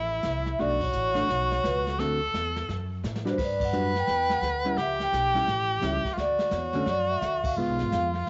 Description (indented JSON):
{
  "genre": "jazz, small-group swing and bop",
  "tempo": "172 BPM",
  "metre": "4/4",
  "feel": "swing 63% on 8ths",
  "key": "unclear",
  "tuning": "A4 = 440 Hz",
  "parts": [
    { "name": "edgy tenor saxophone", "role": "second line", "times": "0.0-8.3 s", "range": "E4 to B4", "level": "-32 LUFS", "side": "equal", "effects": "cassette tape" },
    { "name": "upright bass", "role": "bass", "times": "0.0-8.3 s", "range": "G#1 to A2", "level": "-35 LUFS", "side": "equal", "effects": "none" },
    { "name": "jazz brush drum kit", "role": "drums", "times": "0.2-8.3 s", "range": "brushed snare drum, crash cymbal, hi-hat, kick drum, snare drum", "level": "-39 LUFS", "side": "equal", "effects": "cassette tape" },
    { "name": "vibraphone with soft mallets", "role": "melody", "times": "0.3-8.3 s", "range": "A4 to G5", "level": "-31 LUFS", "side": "equal", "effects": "none" },
    { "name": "hollow-body jazz guitar", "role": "accompaniment", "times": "0.6-8.1 s", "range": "D3 to B4", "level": "-33 LUFS", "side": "equal", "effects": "cassette tape" }
  ],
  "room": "light reverb, small room ambience",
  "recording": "home recording on cassette, vinyl crackle, nothing above 7.7 kHz",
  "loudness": "-27 LUFS",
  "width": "mono",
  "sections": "0.0-8.3 A section",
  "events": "band accent 0.8, 3.6, 7.4; drum fill 3.0-3.4",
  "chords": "0.0 C6; 0.6 Bm7; 2.0 D7; 3.4 Gmaj7; 4.8 A7; 6.2 Dmaj7; 7.6 C#7"
}